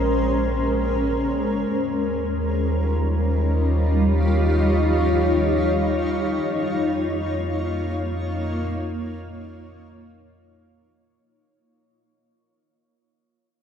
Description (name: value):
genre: ambient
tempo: free time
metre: none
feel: none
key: unclear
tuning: A4 = 440 Hz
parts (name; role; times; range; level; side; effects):
- granular cloud pad; sustained chords; 0.0-11.3 s; G3 to Db5; -22 LUFS; equal; built-in reverb
- warm sub bass; bass; 0.0-11.2 s; Bb1 to F2; -24 LUFS; equal; none
room: wet huge ambient reverb, RT60 8.0 s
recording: dark, warm production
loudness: -20 LUFS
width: side -8 dB against mid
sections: 0.0-11.2 A section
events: fade-in on ambient pad 0.0-11.2; fade-out 4.9-11.2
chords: 0.0 Bbm9; 1.7 Eb9; 6.5 Db69/F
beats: free time